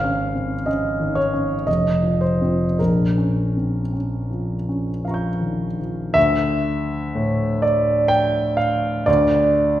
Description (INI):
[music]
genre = classical, impressionist solo piano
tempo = 51-64 BPM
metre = 3/4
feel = rubato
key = Bb minor, D minor from 6.2 s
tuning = A4 = 440 Hz
[part]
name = clear concert grand piano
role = solo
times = 0.0-9.8 s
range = F1 to G6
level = -18 LUFS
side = equal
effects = none
[sound]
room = wet recital hall reverb, RT60 1.4 s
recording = heard from further back in the room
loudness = -18 LUFS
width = side -12 dB against mid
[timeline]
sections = 0.0-6.2 A section; 6.2-9.8 B section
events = none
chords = 0.0 Absus4; 1.7 F5; 2.8 Bbm6; 6.2 Dsus2; 9.1 N.C.